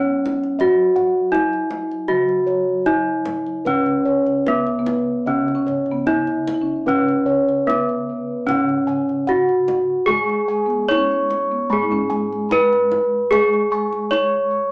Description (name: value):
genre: Javanese gamelan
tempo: 75 BPM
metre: 4/4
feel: straight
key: C# slendro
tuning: A4 = 440 Hz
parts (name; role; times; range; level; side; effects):
- gamelan-type bronze metallophone; melody; 0.0-14.7 s; B3-25c to C#5; -18 LUFS; equal; none
- gamelan-type bronze metallophone; accompaniment; 0.0-14.7 s; C#3 to B3-25c; -30 LUFS; equal; none
- gamelan-type bossed gongs; arpeggios; 0.0-14.6 s; B4-25c to C#6; -26 LUFS; equal; none
- gamelan-type bossed gongs; bass; 0.0-14.7 s; C#2 to G#4; -27 LUFS; equal; none
- kendang; percussion; 0.3-14.3 s; none; -34 LUFS; equal; none
- gamelan-type bronze metallophone; arpeggios; 3.7-14.7 s; B4-25c to C#6; -28 LUFS; equal; none
- marimba with soft mallets; second line; 4.8-14.1 s; B3-25c to E4-45c; -26 LUFS; equal; none
room: wet studio reverb, RT60 0.7 s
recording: band playing live in one room, small speaker sound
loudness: -16 LUFS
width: side -33 dB against mid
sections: 0.0-3.7 A section; 3.7-14.7 B section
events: none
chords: none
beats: | 0.60 1.34 2.09 2.86 | 3.66 4.46 5.26 6.07 | 6.87 7.68 8.48 9.28 | 10.09 10.89 11.70 12.50 | 13.30 14.11